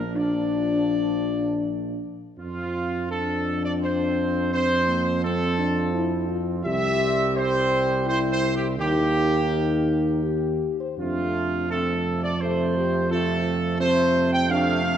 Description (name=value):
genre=classical, ceremonial fanfare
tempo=84 BPM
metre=3/4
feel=straight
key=F major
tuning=A4 = 440 Hz
part: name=clear trumpet section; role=melody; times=0.0-15.0 s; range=F4 to G5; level=-25 LUFS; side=equal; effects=none
part: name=clear trombone section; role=sustained chords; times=0.0-15.0 s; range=C3 to D4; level=-32 LUFS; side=right 3 dB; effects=none
part: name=mellow French horn section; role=sustained chords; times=0.0-15.0 s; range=Bb3 to C5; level=-26 LUFS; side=left 4 dB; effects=none
part: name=warm tuba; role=bass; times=0.0-15.0 s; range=Bb1 to F2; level=-27 LUFS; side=right 4 dB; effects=none
room=wet concert hall reverb, RT60 2.1 s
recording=dark, warm production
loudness=-21 LUFS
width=side -9 dB against mid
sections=0.0-2.4 A section; 2.4-15.0 B section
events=none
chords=0.0 Bb; 2.4 F; 6.7 C; 8.8 Eb; 11.0 F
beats=| 0.16 0.90 1.63 | 2.38 3.10 3.82 | 4.53 5.24 5.95 | 6.66 7.36 8.07 | 8.79 9.52 10.25 | 10.99 11.71 12.41 | 13.12 13.81 14.51